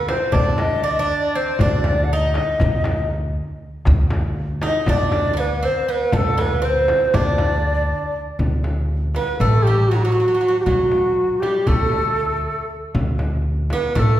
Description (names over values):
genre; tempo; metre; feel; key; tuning
Turkish makam ensemble; 238 BPM (eighths); 9/8; straight; D makam hicaz; A4 = 440 Hz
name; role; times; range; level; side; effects
breathy ney; melody; 0.0-14.2 s; Eb4 to F#5; -20 LUFS; equal; none
Greek bouzouki; second line; 0.0-14.2 s; F#3 to Eb4; -25 LUFS; right 2 dB; none
upright bass; bass; 0.0-14.2 s; A1 to D2; -21 LUFS; equal; none
darbuka; percussion; 0.1-8.1 s; none; -26 LUFS; left 1 dB; none
frame drum; percussion; 0.1-14.1 s; none; -25 LUFS; left 1 dB; none
room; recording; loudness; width
wet recital hall reverb, RT60 1.7 s; heard from further back in the room; -17 LUFS; side -12 dB against mid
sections
0.0-8.4 A section; 8.4-14.2 B section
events
none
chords
none